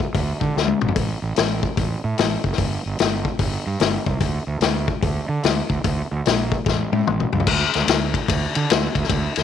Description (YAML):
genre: blues rock power trio and southern rock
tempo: 147 BPM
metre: 4/4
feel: swing 64% on 8ths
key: unclear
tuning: A4 = 440 Hz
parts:
  - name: vintage drum kit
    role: drums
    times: 0.0-9.4 s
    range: crash cymbal, hi-hat, kick drum, ride cymbal, snare drum, toms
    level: -20 LUFS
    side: left 5 dB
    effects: none
  - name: fuzz fingered electric bass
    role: bass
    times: 0.2-9.4 s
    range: F#1 to D3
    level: -24 LUFS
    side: right 3 dB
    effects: overdrive
room: light reverb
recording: 1960s-style stereo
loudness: -19 LUFS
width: side -9 dB against mid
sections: 0.0-7.5 A section; 7.5-9.4 B section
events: drum fill 0.5-1.0, 6.7-7.5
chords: none